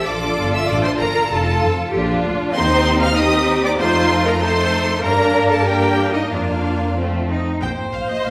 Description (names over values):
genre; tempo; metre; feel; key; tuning
quick classical-period movement for string orchestra; 96 BPM; 2/4; straight; unclear; A4 = 440 Hz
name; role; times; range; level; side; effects
rich symphonic violin section; melody; 0.0-8.3 s; Eb5 to F6; -26 LUFS; equal; none
rich studio violin section; second line; 0.0-8.3 s; A3 to G5; -24 LUFS; equal; none
clear symphonic viola section; accompaniment; 0.0-8.3 s; Eb4 to F5; -24 LUFS; equal; none
bright studio cello section; bass; 0.0-8.3 s; Bb2 to Bb4; -26 LUFS; equal; none
rich symphonic double bass section; bass; 0.0-8.3 s; F1 to G2; -24 LUFS; equal; none
room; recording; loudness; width
wet recital hall reverb, RT60 1.4 s; recorded in a church or concert hall; -18 LUFS; mono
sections
0.0-7.6 A section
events
none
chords
0.1 Bb; 1.3 F; 1.9 Bb; 2.6 Cm/Eb; 3.8 F7; 5.0 Gm; 6.3 Bb/F; 7.0 F; 7.6 Ebsus2/Bb